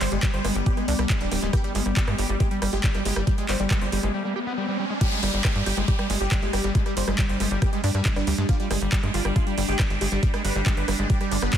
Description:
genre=psychedelic trance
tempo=138 BPM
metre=4/4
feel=straight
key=G major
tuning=A4 = 439 Hz
part: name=supersaw stab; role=melody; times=0.0-11.6 s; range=G3 to C5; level=-30 LUFS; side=equal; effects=phaser, sidechain pumping, digital delay
part: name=evolving wavetable pad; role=sustained chords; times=0.0-11.6 s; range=G3 to D4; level=-32 LUFS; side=left 1 dB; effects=phaser, built-in reverb, sidechain pumping
part: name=overdriven acid bass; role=riff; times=0.0-11.6 s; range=G3 to G4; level=-31 LUFS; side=right 2 dB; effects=distortion, auto-pan, vintage 12-bit sampler grit, sidechain pumping, digital delay
part: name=tight sequencer bass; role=bass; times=0.0-11.5 s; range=D1 to G2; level=-26 LUFS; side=equal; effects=none
part: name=garage drum kit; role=drums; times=0.0-11.6 s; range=crash cymbal, handclaps, hi-hat, rim click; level=-30 LUFS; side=right 1 dB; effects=overdrive
part: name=electronic kick drum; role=drums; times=0.2-11.6 s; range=none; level=-23 LUFS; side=equal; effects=overdrive
part: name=riser and downlifter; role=sound effects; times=3.1-8.5 s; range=none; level=-33 LUFS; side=equal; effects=none
room=little or no reverb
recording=dense, heavily limited modern master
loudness=-21 LUFS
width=side -10 dB against mid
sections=0.0-5.0 A section; 5.0-11.6 B section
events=riser 3.1-5.0; break 4.1-5.0; drop 5.0-11.6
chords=0.0 G5

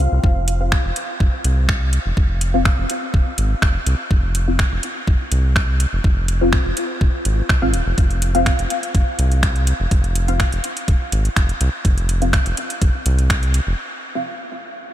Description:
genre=minimal techno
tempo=124 BPM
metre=4/4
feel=straight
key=F minor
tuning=A4 = 440 Hz
part: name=round analog bass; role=bass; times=0.0-13.7 s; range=Eb1 to C2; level=-18 LUFS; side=equal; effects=sidechain pumping
part: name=electronic kick drum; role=drums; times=0.2-13.4 s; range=none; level=-17 LUFS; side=equal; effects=studio reverb
part: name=garage drum kit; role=drums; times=0.5-13.6 s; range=finger snaps, hi-hat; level=-24 LUFS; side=equal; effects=studio reverb
part: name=filtered dub chord stab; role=stabs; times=0.6-14.2 s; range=C4 to F5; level=-25 LUFS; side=left 2 dB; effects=phaser, wide subtle chorus, analog delay
room=light reverb, digital ambience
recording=none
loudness=-16 LUFS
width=side -12 dB against mid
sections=0.0-14.9 A section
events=break 13.8-14.9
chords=0.0 F5

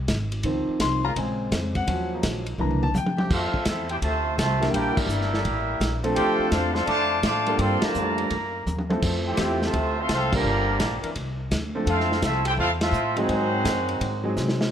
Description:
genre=jazz, big band swing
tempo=168 BPM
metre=4/4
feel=swing 66% on 8ths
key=F major from 3.3 s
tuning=A4 = 439 Hz
part: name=upright bass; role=bass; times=0.0-14.7 s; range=G1 to C3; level=-28 LUFS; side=equal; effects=none
part: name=vintage drum kit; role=drums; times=0.1-14.7 s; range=crash cymbal, hi-hat, kick drum, ride cymbal, snare drum, toms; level=-28 LUFS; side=equal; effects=none
part: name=clear upright piano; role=accompaniment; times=0.4-14.7 s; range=Db3 to C6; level=-27 LUFS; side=equal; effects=none
part: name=warm trombone section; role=sustained chords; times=1.0-14.3 s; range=Bb2 to Bb4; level=-36 LUFS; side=left 2 dB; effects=none
part: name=mellow trumpet section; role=melody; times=3.3-14.4 s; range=Ab3 to D6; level=-27 LUFS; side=right 1 dB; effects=none
part: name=clear trombone section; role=second line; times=3.3-14.4 s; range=C3 to G4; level=-29 LUFS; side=equal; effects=none
room=light reverb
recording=none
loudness=-22 LUFS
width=side -9 dB against mid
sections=0.0-3.3 A section; 3.3-14.7 B section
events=upright piano solo 0.0-3.3; drum fill 2.6-3.3, 8.7-9.0, 14.4-14.7; band accent 4.9, 7.8, 10.3, 12.8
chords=0.4 Dbmaj7; 1.2 Bbm7; 1.9 Ebm7; 2.6 C9; 4.7 Em7b5; 5.5 A5; 6.2 Dm7; 7.6 Gm9; 8.3 Gb7; 9.0 Fmaj9; 9.7 Dm9; 10.4 Gm7; 11.2 Csus2; 11.9 Fmaj7; 13.3 Ab7

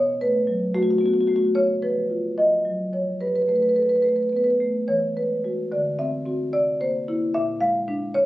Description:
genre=classical, contemporary piece for solo marimba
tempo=74 BPM (dotted quarters)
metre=6/8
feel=rubato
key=unclear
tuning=A4 = 439 Hz
part: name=marimba with medium mallets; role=solo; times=0.0-8.3 s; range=G2 to F5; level=-20 LUFS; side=equal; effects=none
room=light reverb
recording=recorded on a phone in the room, studio reverb, compression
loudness=-20 LUFS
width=side -16 dB against mid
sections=0.0-8.3 A section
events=none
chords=0.0 B5; 1.6 C#9; 3.2 Gadd9; 4.9 Eadd9; 5.7 D9; 6.5 C7; 7.3 Bb7

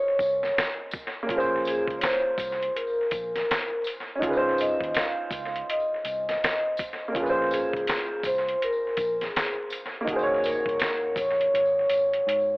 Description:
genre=lo-fi hip hop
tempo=82 BPM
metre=4/4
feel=swing 60% on 16ths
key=Db major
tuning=A4 = 440 Hz
part: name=vibraphone with soft mallets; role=melody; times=0.0-12.6 s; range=Ab4 to F5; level=-26 LUFS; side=equal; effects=low-pass filter
part: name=dark upright piano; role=accompaniment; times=0.0-12.6 s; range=Bb3 to Eb5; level=-29 LUFS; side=right 1 dB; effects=low-pass filter, analog delay
part: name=vintage muted fingered electric bass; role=bass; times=0.2-12.6 s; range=Ab1 to Ab2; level=-46 LUFS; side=equal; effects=none
part: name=lo-fi sampler-style drum kit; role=drums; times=0.2-12.5 s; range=hi-hat, kick drum, snare drum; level=-30 LUFS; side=equal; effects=analog delay
part: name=tambourine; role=percussion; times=0.2-12.1 s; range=none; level=-46 LUFS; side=left 1 dB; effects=analog delay
room=moderate spring reverb, RT60 2.6 s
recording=echo-heavy mix, vinyl crackle, telephone sound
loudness=-24 LUFS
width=side -25 dB against mid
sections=0.0-12.6 A section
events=break 0.0-1.3; drum fill 11.5-12.6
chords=0.0 Dbmaj9; 1.3 Bbm9; 4.2 Dbmaj9; 7.1 Bbm9; 10.1 Ab9sus4

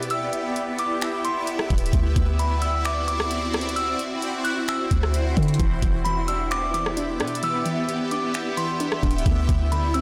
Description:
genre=hip hop, atmospheric cloud-rap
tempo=131 BPM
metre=4/4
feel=half-time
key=E minor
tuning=A4 = 440 Hz
part: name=delicate synth tine bell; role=melody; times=0.0-10.0 s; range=B5 to F#6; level=-30 LUFS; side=equal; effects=chorus, phaser, tape echo
part: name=shimmering ambient pad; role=sustained chords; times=0.0-10.0 s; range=B3 to E5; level=-30 LUFS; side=equal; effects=chorus, built-in reverb, phaser, sidechain pumping
part: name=soft 808-style bass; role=bass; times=0.0-10.0 s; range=D1 to D3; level=-27 LUFS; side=equal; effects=transformer saturation
part: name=trap drum kit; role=drums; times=0.0-10.0 s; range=finger snaps, hi-hat, kick drum, rim click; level=-28 LUFS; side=equal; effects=soft clipping on snare
part: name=warbly dusty pluck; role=arpeggios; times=5.6-10.0 s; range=D3 to D4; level=-34 LUFS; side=equal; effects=chorus, phaser, tape echo
room=light reverb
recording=blown-out, overdriven recording, overdrive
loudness=-24 LUFS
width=mono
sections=0.0-10.0 A section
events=none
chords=0.0 Em7; 1.9 D9; 5.6 Em7; 9.3 D9

